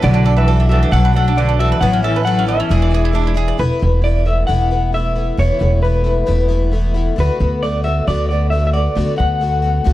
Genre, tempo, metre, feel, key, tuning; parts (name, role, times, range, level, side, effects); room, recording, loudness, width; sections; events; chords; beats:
indie folk with a building arrangement; 134 BPM; 4/4; straight; E mixolydian; A4 = 440 Hz
electric guitar through a small old amp; melody; 0.0-9.9 s; B4 to F#5; -20 LUFS; left 1 dB; tremolo
clear cello; second line; 0.0-3.3 s; D3 to F#3; -22 LUFS; left 3 dB
picked plugged-in twelve-string acoustic guitar; accompaniment; 0.0-9.9 s; E2 to F#4; -23 LUFS; left 5 dB
bowl-back mandolin; arpeggios; 0.0-3.6 s; B3 to D5; -22 LUFS; right 8 dB
upright bass; bass; 0.0-9.9 s; E1 to D2; -15 LUFS; equal; tube saturation
small room ambience; dry, gritty hardware recording, cassette tape; -13 LUFS; side -15 dB against mid
0.0-3.6 A section; 3.6-9.9 B section
0.0 Bm7; 1.8 Aadd9; 2.7 E7; 3.6 Esus4; 7.2 Bm7/D
| 0.03 0.48 0.93 1.38 | 1.82 2.27 2.71 3.16 | 3.61 4.05 4.50 4.95 | 5.39 5.84 6.29 6.73 | 7.18 7.62 8.07 8.52 | 8.96 9.41 9.86